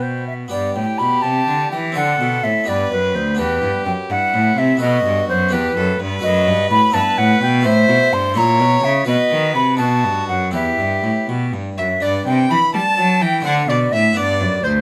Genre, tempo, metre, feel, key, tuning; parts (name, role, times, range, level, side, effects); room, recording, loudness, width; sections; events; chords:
classical, baroque-style sonata movement with continuo; 84 BPM (dotted quarters); 6/8; straight; G major, E minor from 6.2 s; A4 = 438 Hz
bright baroque flute; melody; 0.0-14.8 s; B4 to C6; -20 LUFS; equal
rich violin; second line; 0.0-14.7 s; E4 to B5; -25 LUFS; equal
harpsichord; accompaniment; 0.0-14.8 s; D2 to D5; -28 LUFS; equal
rich cello; bass; 0.0-14.8 s; D2 to G3; -22 LUFS; equal
moderate studio reverb, RT60 0.5 s; -17 LUFS; mono
0.5-12.0 A section; 12.0-14.8 A section
0.0 G; 2.0 D7; 2.7 G; 3.4 Em; 4.8 B7; 5.5 Em; 6.2 B7/F#; 6.9 Em/G; 7.7 Am; 8.4 A#dim; 9.1 B; 9.8 B7; 10.5 Em; 12.0 G; 13.5 D5; 14.2 G